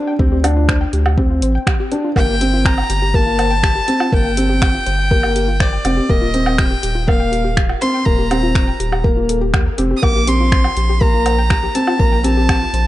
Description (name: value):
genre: piano and strings electronica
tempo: 122 BPM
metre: 4/4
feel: straight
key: G minor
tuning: A4 = 440 Hz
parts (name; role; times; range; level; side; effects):
- felt-muted upright piano; riff; 0.0-12.6 s; Bb3 to D4; -19 LUFS; left 1 dB; none
- warbly dusty pluck; arpeggios; 0.1-12.8 s; F4 to G5; -26 LUFS; left 3 dB; chorus, sidechain pumping, tape echo
- round analog bass; bass; 0.2-12.9 s; Eb1 to Eb2; -18 LUFS; equal; sidechain pumping
- electronic kick drum; drums; 0.2-12.6 s; none; -16 LUFS; equal; none
- deep house drum kit; drums; 0.4-12.8 s; finger snaps, hi-hat, woodblock; -22 LUFS; right 2 dB; none
- clear violin; melody; 2.2-12.9 s; D5 to Eb6; -20 LUFS; equal; none
room: light reverb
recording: dark, warm production, nothing above 10.6 kHz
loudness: -13 LUFS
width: side -15 dB against mid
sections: 0.0-12.9 A section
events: none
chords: 0.0 N.C.; 2.2 Gm; 6.1 Eb5; 10.0 Bbsus2